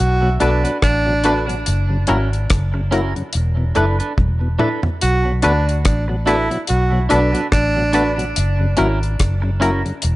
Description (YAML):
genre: roots reggae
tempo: 72 BPM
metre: 4/4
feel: swing 56% on 16ths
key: B dorian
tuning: A4 = 440 Hz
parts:
  - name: breathy tenor saxophone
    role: second line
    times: 0.0-8.1 s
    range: D4 to F#4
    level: -22 LUFS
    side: right 2 dB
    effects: tape echo
  - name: vintage muted fingered electric bass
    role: bass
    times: 0.0-10.2 s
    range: E1 to D2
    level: -18 LUFS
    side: equal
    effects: none
  - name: tonewheel organ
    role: accompaniment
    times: 0.2-9.9 s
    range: E2 to E4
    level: -26 LUFS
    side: left 1 dB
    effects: overdrive
  - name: clean electric guitar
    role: accompaniment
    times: 0.4-9.8 s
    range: C#4 to B4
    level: -25 LUFS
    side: right 3 dB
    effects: wide subtle chorus, tape echo
  - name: filtered dub chord stab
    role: stabs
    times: 0.4-9.8 s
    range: C#4 to B4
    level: -22 LUFS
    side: left 3 dB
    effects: chorus
  - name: deep reggae drum kit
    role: drums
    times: 0.4-10.2 s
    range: hi-hat, kick drum, rim click, toms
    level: -20 LUFS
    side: equal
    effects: none
room: light reverb, studio reverb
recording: nothing above 10.6 kHz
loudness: -15 LUFS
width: side -18 dB against mid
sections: 0.0-10.2 A section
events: drum fill 4.2-5.0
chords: 0.0 Bm7; 1.7 F#7; 3.3 E7sus4; 5.0 Bm7; 8.4 F#7